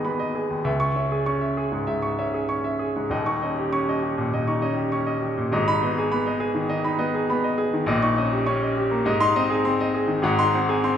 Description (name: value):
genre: classical, virtuoso piano study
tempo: 101 BPM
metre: 4/4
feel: rubato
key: G# minor, Ab major from 7.9 s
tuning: A4 = 440 Hz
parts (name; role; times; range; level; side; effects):
- clear baby grand piano; solo; 0.0-11.0 s; D#1 to C#6; -21 LUFS; equal; none
room: wet recital hall reverb, RT60 1.4 s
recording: heard from further back in the room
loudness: -21 LUFS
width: side -9 dB against mid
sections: 0.0-11.0 A section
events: none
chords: 0.0 G#m; 0.7 C#m; 3.1 D#7; 5.5 G#m; 7.9 Eb7/Bb; 9.1 Ab; 10.2 Ab7